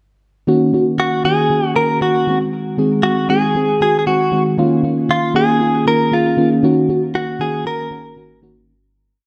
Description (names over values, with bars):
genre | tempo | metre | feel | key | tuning
pop | 117 BPM | 4/4 | straight | Eb dorian | A4 = 440 Hz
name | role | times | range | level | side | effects
mellow FM electric piano | accompaniment | 0.5-8.7 s | Eb3 to Ab4 | -18 LUFS | equal | chorus, phaser
direct-recorded clean electric guitar | melody | 1.0-8.4 s | F4 to Bb4 | -20 LUFS | equal | tape echo
room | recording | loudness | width
wet recital hall reverb, RT60 1.7 s | faint mains hum | -16 LUFS | mono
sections
0.5-8.7 verse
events
fade-out 6.6-8.7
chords
0.5 Ebm7; 2.3 Ab7; 4.6 Db69; 6.6 Gb6